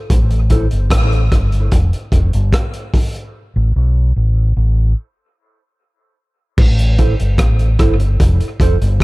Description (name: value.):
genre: dub reggae.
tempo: 74 BPM.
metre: 4/4.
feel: straight.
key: A minor.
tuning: A4 = 439 Hz.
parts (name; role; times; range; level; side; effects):
fingered electric bass; bass; 0.1-9.0 s; F1 to B1; -13 LUFS; equal; none.
crunchy breakbeat drum kit; drums; 0.1-9.0 s; crash cymbal, hi-hat, kick drum, rim click; -15 LUFS; equal; none.
mellow electric guitar; accompaniment; 0.5-0.7, 7.0-8.9 s; E4 to C5; -24 LUFS; right 3 dB; wide subtle chorus, dub echo.
room: little or no reverb.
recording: echo-heavy mix.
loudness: -12 LUFS.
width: side -22 dB against mid.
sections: 0.0-6.6 A section; 6.6-9.0 B section.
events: break 3.3-6.6; stop 5.0-6.6.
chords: 0.1 N.C.; 1.7 Fsus2; 3.3 Asus2; 5.0 N.C.; 6.6 Am; 8.2 F.